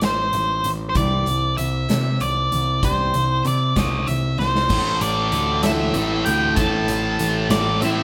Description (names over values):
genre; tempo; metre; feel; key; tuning
quiet-loud alternative rock; 64 BPM (dotted quarters); 6/8; straight; A minor; A4 = 438 Hz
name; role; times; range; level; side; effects
octave-fuzz lead guitar; melody; 0.0-8.0 s; C5 to A5; -24 LUFS; equal; distortion
picked steel-string acoustic guitar; arpeggios; 0.0-8.0 s; A2 to E4; -31 LUFS; equal; none
growling picked electric bass; bass; 0.0-8.0 s; A1 to C3; -26 LUFS; equal; overdrive
big rock drum kit; drums; 0.0-8.0 s; crash cymbal, hi-hat, kick drum, snare drum; -28 LUFS; equal; none
thick fuzz guitar; riff; 4.7-8.0 s; A2 to A3; -25 LUFS; equal; distortion
room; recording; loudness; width
moderate large studio reverb, RT60 1.0 s; band playing live in one room; -20 LUFS; mono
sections
0.0-4.7 A section; 4.7-8.0 B section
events
drum fill 4.4-4.7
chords
0.0 Am; 1.0 Cadd9; 4.7 Am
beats
0.01 | 0.95 1.89 | 2.83 3.77 | 4.71 5.64 | 6.58 7.51